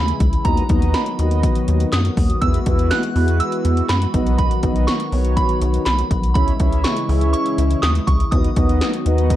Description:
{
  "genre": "synth-pop",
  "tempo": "122 BPM",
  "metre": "4/4",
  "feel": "straight",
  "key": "unclear",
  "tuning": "A4 = 440 Hz",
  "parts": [
    { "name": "soft synth bell", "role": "melody", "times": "0.0-9.4 s", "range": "A#5 to F#6", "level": "-24 LUFS", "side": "right 3 dB", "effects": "chorus, analog delay" },
    { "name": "warm analog pad", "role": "sustained chords", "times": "0.0-9.4 s", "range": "C#3 to F#4", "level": "-26 LUFS", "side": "left 2 dB", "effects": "chorus" },
    { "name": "rubbery square bass", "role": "bass", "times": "0.0-9.3 s", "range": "B1 to F#2", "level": "-18 LUFS", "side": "equal", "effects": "none" },
    { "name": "80s electronic pad drums", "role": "drums", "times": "0.1-9.4 s", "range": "handclaps, hi-hat, kick drum, snare drum", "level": "-20 LUFS", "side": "equal", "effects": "none" },
    { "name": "mellow synth brass", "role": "accompaniment", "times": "0.5-9.4 s", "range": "B3 to E5", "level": "-24 LUFS", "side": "equal", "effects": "chorus" }
  ],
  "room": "light reverb, digital ambience",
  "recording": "dark, warm production",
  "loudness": "-15 LUFS",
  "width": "side -13 dB against mid",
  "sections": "0.0-9.4 A section",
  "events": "none",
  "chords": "0.5 B/D#; 2.4 Eadd9; 4.1 B; 6.4 C#m; 8.3 B/D#"
}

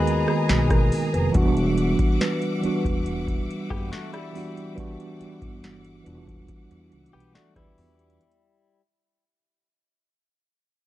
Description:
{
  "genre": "contemporary R&B",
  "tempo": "70 BPM",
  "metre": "4/4",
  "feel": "straight",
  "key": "unclear",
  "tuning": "A4 = 439 Hz",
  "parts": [
    { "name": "mellow tine electric piano", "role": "accompaniment", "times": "0.0-8.4 s", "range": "D#3 to D5", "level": "-26 LUFS", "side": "right 2 dB", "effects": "medium stereo tremolo" },
    { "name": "bright studio string section", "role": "sustained chords", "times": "0.0-8.2 s", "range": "G3 to D6", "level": "-35 LUFS", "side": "left 1 dB", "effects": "none" },
    { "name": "direct-recorded clean electric guitar", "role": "arpeggios", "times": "0.0-8.8 s", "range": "G3 to B4", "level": "-33 LUFS", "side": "left 7 dB", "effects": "tape echo, plate reverb" },
    { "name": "upright bass", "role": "bass", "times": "0.0-8.2 s", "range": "E1 to E2", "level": "-27 LUFS", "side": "equal", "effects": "none" },
    { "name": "booming analog drum machine", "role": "drums", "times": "0.1-8.4 s", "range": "hi-hat, kick drum, rim click, snare drum", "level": "-24 LUFS", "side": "equal", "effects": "vintage 12-bit sampler grit" },
    { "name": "synth chime", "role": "texture", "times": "2.2-3.6 s", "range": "B4", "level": "-35 LUFS", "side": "left 2 dB", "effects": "ensemble chorus, tremolo, tape echo" }
  ],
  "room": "light reverb",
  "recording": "cassette tape",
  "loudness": "-20 LUFS",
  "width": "side -15 dB against mid",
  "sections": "0.0-8.2 A section",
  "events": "fade-out 0.0-8.2",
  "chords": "0.0 G#m9; 1.3 Em9"
}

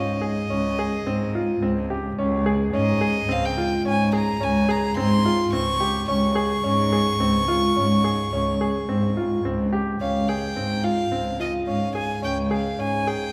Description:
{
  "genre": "contemporary instrumental, chamber music in an uneven meter",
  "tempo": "107 BPM",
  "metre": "7/4",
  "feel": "straight",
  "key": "Db lydian",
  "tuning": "A4 = 439 Hz",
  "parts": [
    { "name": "clear violin", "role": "melody", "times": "0.0-13.3 s", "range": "Eb5 to Db6", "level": "-29 LUFS", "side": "equal", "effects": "none" },
    { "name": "clear baby grand piano", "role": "arpeggios", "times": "0.0-13.3 s", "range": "C4 to Ab4", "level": "-28 LUFS", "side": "equal", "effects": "none" },
    { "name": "warm cello", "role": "bass", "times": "0.0-13.3 s", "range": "Db2 to Ab2", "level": "-26 LUFS", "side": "equal", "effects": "none" }
  ],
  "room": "wet concert hall reverb, RT60 2.4 s",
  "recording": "heard from further back in the room",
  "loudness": "-23 LUFS",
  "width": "mono",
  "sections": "0.0-10.0 A section; 10.0-13.3 B section",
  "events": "none",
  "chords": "0.0 Dbmaj7sus2; 10.0 Dbmaj7"
}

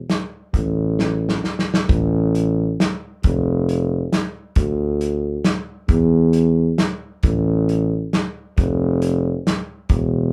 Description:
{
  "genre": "alpine folk, alpine dance band",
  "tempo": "135 BPM",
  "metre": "3/4",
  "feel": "straight",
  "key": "unclear",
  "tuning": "A4 = 440 Hz",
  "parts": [
    { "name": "dark tuba", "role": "bass", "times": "0.0-10.3 s", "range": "E1 to E2", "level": "-20 LUFS", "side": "equal", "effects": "none" },
    { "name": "loose indie drum kit", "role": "drums", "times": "0.1-10.0 s", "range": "hi-hat, kick drum, snare drum", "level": "-22 LUFS", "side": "equal", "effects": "none" }
  ],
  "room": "moderate studio ambience, RT60 0.5 s",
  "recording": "band playing live in one room",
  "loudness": "-20 LUFS",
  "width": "mono",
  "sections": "0.0-1.9 A section; 1.9-10.3 A section",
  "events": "drum fill 1.0-1.9",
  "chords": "none"
}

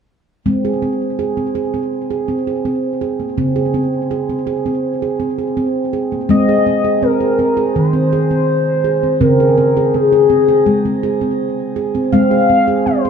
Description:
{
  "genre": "world meditative, meditative tuned percussion",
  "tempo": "82 BPM",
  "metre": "4/4",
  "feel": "straight",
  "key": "Ab major",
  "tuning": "A4 = 440 Hz",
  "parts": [
    { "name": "handpan", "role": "arpeggios", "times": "0.5-13.1 s", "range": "Db3 to Ab4", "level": "-15 LUFS", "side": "right 2 dB", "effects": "shimmer reverb, ping-pong delay" },
    { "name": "warm velvety synth lead", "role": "melody", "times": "6.3-13.1 s", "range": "Ab4 to F5", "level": "-15 LUFS", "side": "left 4 dB", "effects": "chorus, shimmer reverb, ping-pong delay" }
  ],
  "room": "wet studio reverb, RT60 0.5 s",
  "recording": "dark, warm production",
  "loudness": "-13 LUFS",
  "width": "side -7 dB against mid",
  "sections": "0.5-6.3 A section; 6.3-13.1 B section",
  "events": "none",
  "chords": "0.5 Ab; 3.4 Db5; 6.3 Ab; 9.2 Db5; 12.1 Ab"
}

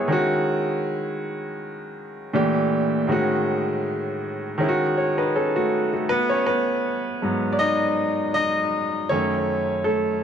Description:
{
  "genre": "R&B",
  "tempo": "80 BPM",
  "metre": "4/4",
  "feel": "swing 54% on 16ths",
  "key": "unclear",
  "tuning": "A4 = 435 Hz",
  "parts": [
    { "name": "clear baby grand piano", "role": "solo", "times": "0.0-10.2 s", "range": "F#2 to D#5", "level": "-21 LUFS", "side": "equal", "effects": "tape echo" }
  ],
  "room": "light reverb",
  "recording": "dark, warm production",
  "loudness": "-20 LUFS",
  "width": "side -8 dB against mid",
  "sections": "0.0-6.1 A section; 6.1-10.2 B section",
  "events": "grand piano solo 6.1-10.2",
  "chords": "0.1 Emaj13/D#; 2.3 A#maj7#11; 3.1 Amaj7#11; 4.6 F#sus2; 6.1 G#m7; 9.1 F#m6"
}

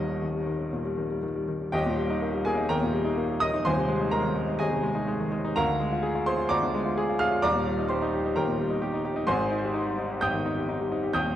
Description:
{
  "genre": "classical, virtuoso piano study",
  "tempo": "128 BPM",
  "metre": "4/4",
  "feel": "uneven beats, rubato",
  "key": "Eb major",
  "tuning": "A4 = 440 Hz",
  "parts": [
    { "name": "warm grand piano", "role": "solo", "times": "0.0-11.4 s", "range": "Eb1 to G6", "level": "-24 LUFS", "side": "equal", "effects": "none" }
  ],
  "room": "wet recital hall reverb, RT60 1.4 s",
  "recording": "worn, warbling old tape, cassette tape, warbly pitch drift",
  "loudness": "-24 LUFS",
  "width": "side -11 dB against mid",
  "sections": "0.0-1.7 A section; 1.7-11.4 B section",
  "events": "none",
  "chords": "0.0 Eb; 3.7 Ab/Eb; 5.6 Bb7/D; 7.4 Eb; 9.3 Abmaj7"
}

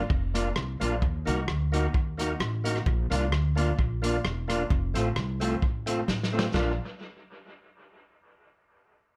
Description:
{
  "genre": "ska",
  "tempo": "130 BPM",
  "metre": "4/4",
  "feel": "swing 55% on 8ths",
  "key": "Bb major",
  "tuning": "A4 = 440 Hz",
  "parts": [
    { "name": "percussive tonewheel organ", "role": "stabs", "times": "0.0-6.7 s", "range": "A3 to Bb4", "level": "-36 LUFS", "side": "equal", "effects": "overdrive, fast rotary speaker" },
    { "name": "upright bass", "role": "bass", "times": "0.0-6.8 s", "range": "E1 to Eb2", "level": "-31 LUFS", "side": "equal", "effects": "none" },
    { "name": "vintage drum kit", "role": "drums", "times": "0.1-6.7 s", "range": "china cymbal, hi-hat, kick drum, rim click, snare drum", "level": "-32 LUFS", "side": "equal", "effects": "dub echo" },
    { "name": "mellow electric guitar", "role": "accompaniment", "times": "0.3-6.7 s", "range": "A3 to Gb4", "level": "-35 LUFS", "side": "equal", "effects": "none" }
  ],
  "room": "light reverb",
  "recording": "none",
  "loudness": "-28 LUFS",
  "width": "mono",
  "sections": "0.0-6.5 A section; 6.5-8.4 B section",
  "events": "drum fill 6.1-6.5",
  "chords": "0.0 Bb; 1.0 Ebm; 2.9 Bb; 4.7 F; 6.5 Bb"
}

